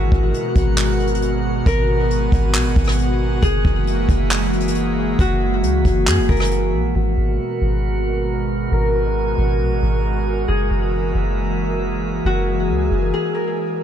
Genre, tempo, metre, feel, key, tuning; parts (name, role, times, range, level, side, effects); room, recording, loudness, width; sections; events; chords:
hip hop, atmospheric cloud-rap; 136 BPM; 4/4; half-time; G# minor; A4 = 440 Hz
Celtic harp; melody; 0.0-13.8 s; F#4 to A#4; -24 LUFS; left 2 dB; low-pass filter, ping-pong delay
airy breathy pad; sustained chords; 0.0-13.8 s; B2 to A#4; -22 LUFS; right 1 dB; chorus, sidechain pumping, low-pass filter
soft 808-style bass; bass; 0.0-13.1 s; F#1 to F#2; -20 LUFS; equal
drifting glass-harmonics texture; texture; 0.0-13.8 s; A#3 to G#5; -31 LUFS; right 3 dB; chorus, built-in reverb
jazz brush drum kit; drums; 0.1-6.6 s; handclaps, hi-hat, kick drum, rim click; -20 LUFS; equal
little or no reverb; -16 LUFS; side -9 dB against mid
0.0-7.0 A section; 7.0-13.8 B section
filter sweep 7.0-13.8; break 13.1-13.8
0.0 G#m9; 3.4 F#9; 7.0 G#m9; 10.5 F#9